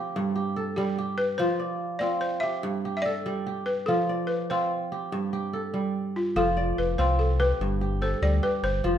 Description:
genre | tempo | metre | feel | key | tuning
west african traditional, West African string and xylophone music | 97 BPM (dotted quarters) | 12/8 | straight | unclear | A4 = 440 Hz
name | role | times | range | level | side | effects
kora | arpeggios | 0.0-9.0 s | G2 to D5 | -27 LUFS | right 1 dB | none
balafon | melody | 0.8-9.0 s | F4 to E5 | -29 LUFS | left 1 dB | none
sub bass with octave | bass | 6.4-9.0 s | F1 to D2 | -26 LUFS | left 1 dB | none
room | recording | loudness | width
light reverb | none | -24 LUFS | side -10 dB against mid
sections
0.0-6.4 A section; 6.4-9.0 A section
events
none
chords
0.2 Gsus2; 1.4 F5; 2.6 G5; 3.9 F; 5.1 Gsus2; 6.4 F; 7.6 G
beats
0.15 0.77 | 1.40 2.02 2.64 3.26 | 3.88 4.50 5.12 5.74 | 6.36 6.98 7.60 8.22 | 8.84

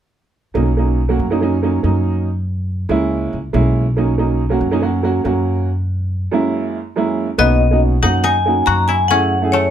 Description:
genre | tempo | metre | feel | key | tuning
jazz | 140 BPM | 4/4 | straight | B major | A4 = 440 Hz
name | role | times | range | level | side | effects
warm upright piano | accompaniment | 0.5-9.7 s | F#2 to G#4 | -18 LUFS | right 4 dB | none
upright bass | bass | 0.5-9.7 s | B1 to F#2 | -18 LUFS | equal | none
vibraphone with medium hard mallets | melody | 7.4-9.7 s | C#5 to A#5 | -16 LUFS | left 2 dB | none
koto | second line | 7.4-9.7 s | A3 to F#4 | -19 LUFS | left 6 dB | none
room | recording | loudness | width
light reverb | none | -14 LUFS | side -10 dB against mid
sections
0.6-7.4 A section; 7.4-9.7 B section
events
break 5.7-7.4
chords
0.6 Bmaj7; 2.3 F#7; 4.0 Bmaj7; 5.7 F#7; 7.4 Bmaj7; 9.1 F#m7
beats
| 0.55 0.98 1.41 1.83 | 2.26 2.69 3.12 3.54 | 3.97 4.40 4.83 5.25 | 5.68 6.11 6.54 6.96 | 7.39 7.82 8.25 8.67 | 9.10 9.53

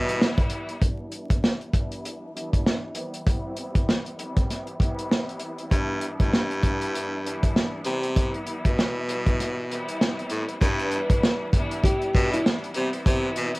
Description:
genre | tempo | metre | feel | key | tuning
hip hop, boom-bap hip-hop | 98 BPM | 4/4 | swing 58% on 16ths | G major | A4 = 436 Hz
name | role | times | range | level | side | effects
bright studio string section | accompaniment | 0.0-13.6 s | E3 to E4 | -32 LUFS | equal | cassette tape, high-pass filter, low-pass filter
edgy baritone saxophone | bass | 0.0-0.3, 5.7-13.5 s | G2 to C3 | -27 LUFS | equal | none
warm soul drum kit | drums | 0.1-13.6 s | hi-hat, kick drum, snare drum | -23 LUFS | equal | cassette tape
nylon-string guitar | melody | 10.6-12.4 s | E4 to B4 | -28 LUFS | equal | high-pass filter, low-pass filter, cassette tape
room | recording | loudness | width
little or no reverb | home recording on cassette, vinyl crackle | -22 LUFS | side -23 dB against mid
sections
0.8-10.6 A section; 10.6-13.6 B section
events
filter sweep on string section 0.8-10.6; break 9.4-10.6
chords
0.0 Cmaj7 (rootless); 0.8 G6; 3.0 Cmaj7; 5.7 G6; 7.9 Cmaj7; 10.6 G6; 12.8 Cmaj7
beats
0.21 | 0.82 1.43 2.04 2.65 | 3.27 3.88 4.49 5.10 | 5.72 6.33 6.94 7.55 | 8.16 8.78 9.39 10.00 | 10.61 11.23 11.84 12.45 | 13.06

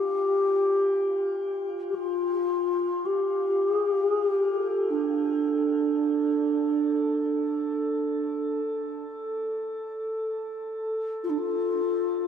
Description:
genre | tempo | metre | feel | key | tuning
world meditative, free-time meditation music | free time | none | none | unclear | A4 = 441 Hz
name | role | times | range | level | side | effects
mellow bass flute | melody | 0.0-12.3 s | D4 to G4 | -24 LUFS | equal | shimmer reverb, analog delay
glass harmonica | texture | 0.0-12.3 s | F4 to A4 | -32 LUFS | equal | shimmer reverb
room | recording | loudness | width
wet spring reverb, RT60 1.3 s, small room ambience | echo-heavy mix | -24 LUFS | side -8 dB against mid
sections
0.0-12.3 A section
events
none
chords
none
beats
free time

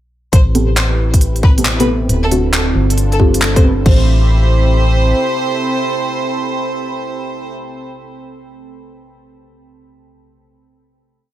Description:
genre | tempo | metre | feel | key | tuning
UK garage, two-step garage | 136 BPM | 4/4 | swing 66% on 16ths | A minor | A4 = 440 Hz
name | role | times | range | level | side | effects
rich chamber violin section | melody | 0.3-7.5 s | A4 to C5 | -22 LUFS | right 1 dB | tape echo
warm analog pad | sustained chords | 0.3-7.5 s | C4 to B5 | -25 LUFS | equal | chorus, vintage 12-bit sampler grit, sidechain pumping
organ-like FM bass | bass | 0.3-5.1 s | D1 to A1 | -14 LUFS | equal | none
electronic kick drum | drums | 0.3-4.0 s | none | -10 LUFS | equal | none
garage drum kit | drums | 0.3-4.0 s | crash cymbal, handclaps, hi-hat | -19 LUFS | equal | none
deep dark ambient pad | texture | 2.0-7.7 s | C4 to B5 | -24 LUFS | right 4 dB | chorus, built-in reverb, sidechain pumping
deep mellow chord stab | stabs | 0.5-7.5 s | B3 to C5 | -19 LUFS | equal | chorus, phaser, tape echo
room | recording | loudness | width
light reverb, digital ambience | echo-heavy mix | -11 LUFS | side -13 dB against mid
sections
0.3-3.9 breakdown; 3.9-7.4 final chord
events
filter sweep on analog synth pad 0.3-3.9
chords
0.3 Am9; 2.1 D7; 2.8 G9sus4; 3.9 Am9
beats
| 0.33 0.77 1.21 1.65 | 2.09 2.54 2.98 3.42 | 3.86 4.30 4.74 5.18 | 5.62 6.06 6.50 6.95

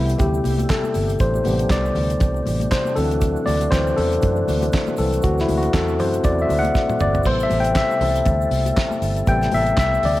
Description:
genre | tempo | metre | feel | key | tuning
disco | 119 BPM | 4/4 | swing 56% on 16ths | A dorian | A4 = 440 Hz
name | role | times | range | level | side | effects
tine electric piano | accompaniment | 0.0-10.2 s | C3 to G5 | -20 LUFS | left 2 dB | none
percussive tonewheel organ | sustained chords | 0.0-10.2 s | C3 to A4 | -29 LUFS | right 2 dB | overdrive, chorus vibrato, slow rotary speaker
vintage muted fingered electric bass | bass | 0.0-10.2 s | G1 to F#2 | -22 LUFS | right 1 dB | none
damped 70s drum kit | drums | 0.1-10.2 s | handclaps, hi-hat, kick drum, snare drum, splash cymbal, toms | -23 LUFS | right 1 dB | none
egg shaker | percussion | 0.1-10.0 s | none | -47 LUFS | right 10 dB | none
congas | percussion | 0.2-10.2 s | none | -32 LUFS | left 4 dB | none
room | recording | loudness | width
light reverb, studio reverb | none | -17 LUFS | side -16 dB against mid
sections
0.0-10.2 A section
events
tine electric piano solo 0.0-10.2; drum fill 6.8-7.3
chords
0.0 Am7; 3.0 D9; 7.3 Am7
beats
0.20 0.70 | 1.20 1.71 2.21 2.71 | 3.22 3.72 4.23 4.73 | 5.24 5.74 6.25 6.75 | 7.25 7.76 8.26 8.77 | 9.27 9.78

